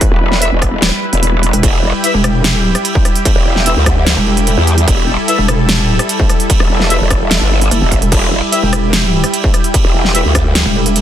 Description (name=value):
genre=heavy wobble dubstep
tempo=148 BPM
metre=4/4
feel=half-time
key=E minor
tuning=A4 = 440 Hz
part: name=lush unison pad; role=sustained chords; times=0.0-11.0 s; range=G3 to B4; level=-18 LUFS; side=equal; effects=chorus, sidechain pumping
part: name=big-room dance drum kit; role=drums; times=0.0-11.0 s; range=crash cymbal, hi-hat, rim click, snare drum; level=-16 LUFS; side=right 1 dB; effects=none
part: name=electronic kick drum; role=drums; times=0.0-10.4 s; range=none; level=-13 LUFS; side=equal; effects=distortion
part: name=growl bass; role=bass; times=0.1-10.6 s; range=E1 to E2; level=-13 LUFS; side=equal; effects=distortion, chorus, overdrive
part: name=warm brass ensemble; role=stabs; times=0.4-10.2 s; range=E4 to E5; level=-20 LUFS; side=left 2 dB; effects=dub echo
part: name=pulsing pluck wobble bass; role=bass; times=1.5-11.0 s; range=E1 to F#1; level=-13 LUFS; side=equal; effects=chorus, overdrive
room=digital ambience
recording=dense, heavily limited modern master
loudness=-10 LUFS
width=side -11 dB against mid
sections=0.0-11.0 A section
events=none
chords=0.0 Em